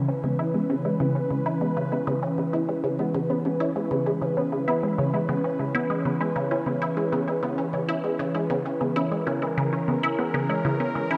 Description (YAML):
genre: ambient, sequencer-driven space music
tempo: 98 BPM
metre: 4/4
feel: straight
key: C# dorian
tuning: A4 = 440 Hz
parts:
  - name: sweeping resonant pad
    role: sustained chords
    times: 0.0-11.2 s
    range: E3 to B4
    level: -29 LUFS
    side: equal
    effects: chorus, shimmer reverb
  - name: resonant blip pluck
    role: riff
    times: 0.0-11.2 s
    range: C#3 to E4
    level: -29 LUFS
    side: equal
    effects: phaser, analog delay, shimmer reverb
  - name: warbly dusty pluck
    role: arpeggios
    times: 0.1-11.2 s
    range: B3 to C#5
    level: -35 LUFS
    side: equal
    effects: chorus, analog delay, shimmer reverb
room: wet spring reverb, RT60 2.3 s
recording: echo-heavy mix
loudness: -26 LUFS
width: mono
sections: 0.0-11.2 A section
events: none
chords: 0.0 C#m7